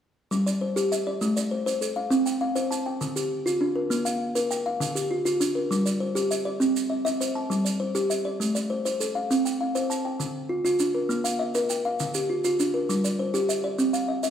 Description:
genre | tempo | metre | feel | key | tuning
southern african traditional, mbira-style interlocking cycle | 134 BPM (dotted quarters) | 12/8 | straight | G equiheptatonic | A4 = 440 Hz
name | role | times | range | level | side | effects
kalimba | arpeggios | 0.3-14.3 s | D3 to A5-29c | -24 LUFS | equal | none
maracas | percussion | 0.3-14.3 s | none | -34 LUFS | right 6 dB | none
room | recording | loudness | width
wet recital hall reverb, RT60 1.4 s | recorded in a church or concert hall | -23 LUFS | side -9 dB against mid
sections
0.3-14.3 A section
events
none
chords
0.3 G5; 1.2 Am; 2.1 C5; 3.0 Dm; 3.9 Bb; 4.8 Dm; 5.7 Gm; 6.6 C; 7.5 G5; 8.4 Am; 9.3 C5; 10.2 Dm; 11.1 Bb; 12.0 Dm; 12.9 Gm; 13.8 C

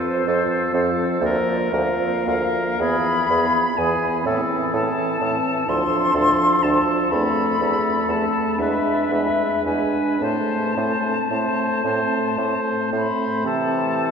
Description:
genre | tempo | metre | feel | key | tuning
classical, slow romantic movement for wind quintet | 36-42 BPM (dotted quarters) | 6/8 | rubato | A minor | A4 = 442 Hz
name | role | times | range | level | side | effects
silver concert flute | melody | 0.0-14.1 s | C5 to C6 | -23 LUFS | left 4 dB | none
warm oboe | second line | 0.0-14.1 s | G#4 to C5 | -25 LUFS | left 1 dB | none
dark clarinet | accompaniment | 0.0-14.1 s | Bb3 to D4 | -27 LUFS | right 4 dB | none
warm French horn | accompaniment | 0.0-14.1 s | E3 to A3 | -26 LUFS | equal | none
warm bassoon | bass | 0.3-14.1 s | D2 to C3 | -25 LUFS | right 2 dB | none
room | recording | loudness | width
wet cathedral reverb, RT60 5.1 s | minimal, uncompressed stereo recording | -18 LUFS | side -6 dB against mid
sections
0.0-13.5 A section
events
none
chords
0.0 F; 1.2 Bb/D; 2.8 E; 4.3 Am; 5.7 Dm7; 7.1 Am/E; 8.6 E7; 10.2 Am; 13.5 C

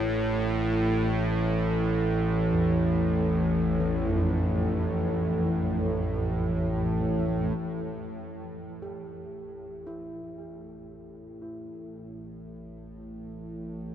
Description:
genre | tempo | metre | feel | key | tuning
dark ambient drone | free time | none | none | unclear | A4 = 444 Hz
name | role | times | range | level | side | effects
bowed-like drone | drone | 0.0-13.9 s | A1 to A2 | -27 LUFS | equal | built-in reverb
gamelan-type bossed gongs | arpeggios | 2.5-13.9 s | E2 to G4 | -32 LUFS | equal | analog delay
room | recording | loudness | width
wet huge ambient reverb, RT60 7.6 s | dreamy mix soaked in reverb | -24 LUFS | side -10 dB against mid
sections
0.0-7.6 A section; 7.6-13.9 B section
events
none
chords
0.0 Dmadd9/A (rootless); 7.6 Fmaj9/A (rootless)

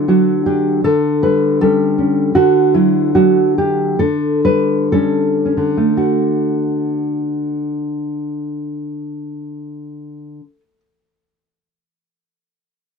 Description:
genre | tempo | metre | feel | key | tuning
romantic piece for solo classical guitar | 55-81 BPM | 2/4 | rubato | D major | A4 = 444 Hz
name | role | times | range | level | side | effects
nylon-string guitar | solo | 0.0-10.8 s | D3 to B4 | -14 LUFS | equal | none
room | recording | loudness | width
light reverb | dry, close 1970s-style studio recording | -13 LUFS | side -5 dB against mid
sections
0.0-6.0 A section; 6.0-10.0 B section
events
slowing down 1.6-6.0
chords
0.0 D; 0.8 A7/D; 2.4 D; 4.0 A7/D; 6.0 D

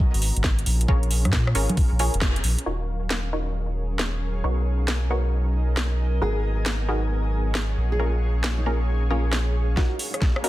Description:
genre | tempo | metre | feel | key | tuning
UK garage, two-step garage | 135 BPM | 4/4 | swing 66% on 16ths | Eb minor | A4 = 442 Hz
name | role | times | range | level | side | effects
warm analog pad | sustained chords | 0.0-10.5 s | Gb3 to Bb5 | -36 LUFS | equal | chorus, sidechain pumping
electronic kick drum | drums | 0.0-2.3, 9.8-10.3 s | none | -21 LUFS | equal | small room ambience
soft dub sub bass | bass | 0.1-10.5 s | Eb1 to Bb2 | -23 LUFS | equal | tube saturation, high-pass filter
garage drum kit | drums | 0.1-10.5 s | congas, hi-hat, rim click, snare drum | -28 LUFS | equal | small room ambience, soft clipping on snare
punchy chord stab | stabs | 0.9-10.5 s | Bb3 to Db5 | -30 LUFS | equal | chorus, tape echo
granular cloud pad | texture | 3.5-10.5 s | Ab4 to Ab5 | -36 LUFS | right 1 dB | built-in reverb, sidechain pumping
nylon-string guitar | melody | 6.2-9.9 s | Db4 to Ab4 | -34 LUFS | equal | low-pass filter, tape echo
riser | sound effects | 10.1-10.5 s | none | -39 LUFS | right 2 dB | none
room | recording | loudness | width
light reverb | dense, heavily limited modern master | -21 LUFS | side -16 dB against mid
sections
0.0-2.7 A section; 2.7-9.8 B section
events
band accent 2.2; filter sweep on synth stab 2.7-9.8; drum fill 9.8-10.5; riser 10.1-10.5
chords
0.0 Abm9; 0.7 Bbm7; 2.7 Ebm7; 4.4 Bmaj7; 6.2 Abm9; 7.8 Bbm7; 9.8 Ebm7

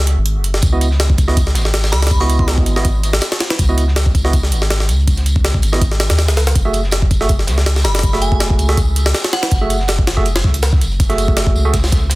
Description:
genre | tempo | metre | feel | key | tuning
drum and bass, jungle | 162 BPM | 4/4 | swing 54% on 16ths | C# minor | A4 = 440 Hz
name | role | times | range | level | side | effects
soft dub sub bass | bass | 0.0-12.2 s | F#1 to D#2 | -16 LUFS | equal | none
jungle sampler-style drum kit | drums | 0.1-12.2 s | hi-hat, kick drum, snare drum | -16 LUFS | equal | small room reverb
crunchy breakbeat drum kit | drums | 0.6-12.2 s | hi-hat, snare drum, tambourine | -29 LUFS | equal | high-pass filter on hats, small room reverb, high-pass filter on snare, high-pass filter on perc, high-pass filter on room
barky tine electric piano | stabs | 0.7-11.7 s | A3 to E5 | -22 LUFS | right 3 dB | dub echo
glassy synth bell | melody | 1.9-2.5, 7.8-9.9 s | F#5 to C#6 | -24 LUFS | equal | chorus, dub echo
room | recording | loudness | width
studio reverb | dense, heavily limited modern master | -12 LUFS | side -20 dB against mid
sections
0.0-12.2 A section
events
break 0.0-0.6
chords
0.0 F#sus2; 0.6 C#m11; 6.6 F#m9

